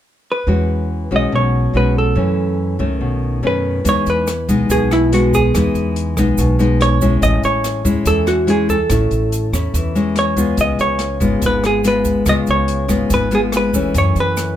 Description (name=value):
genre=bossa nova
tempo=143 BPM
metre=4/4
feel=straight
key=E major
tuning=A4 = 438 Hz
part: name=vintage hollow-body jazz guitar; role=melody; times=0.3-14.6 s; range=E4 to D#5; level=-18 LUFS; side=right 2 dB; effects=none
part: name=nylon-string guitar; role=accompaniment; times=0.5-14.6 s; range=F#2 to F#4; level=-18 LUFS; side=left 3 dB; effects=none
part: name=upright bass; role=bass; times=0.5-14.5 s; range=G#1 to F#2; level=-19 LUFS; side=right 1 dB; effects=none
part: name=open jazz drum kit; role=drums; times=3.9-14.5 s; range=hi-hat, kick drum, rim click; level=-24 LUFS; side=equal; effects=none
part: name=tube shaker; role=percussion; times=3.9-14.6 s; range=none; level=-30 LUFS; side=right 9 dB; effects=none
room=light reverb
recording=none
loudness=-14 LUFS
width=side -11 dB against mid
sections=0.5-3.9 A section; 3.9-14.6 B section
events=none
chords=0.5 E69; 2.2 F#m7; 3.0 B9; 3.9 Emaj7; 7.2 Amaj7; 10.6 C#7; 13.9 F#m7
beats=0.05 | 0.48 0.90 1.32 1.74 | 2.17 2.59 3.01 3.43 | 3.85 4.27 4.70 5.12 | 5.54 5.96 6.38 6.80 | 7.22 7.64 8.06 8.48 | 8.90 9.32 9.74 10.16 | 10.58 11.00 11.42 11.84 | 12.26 12.69 13.11 13.53 | 13.95 14.37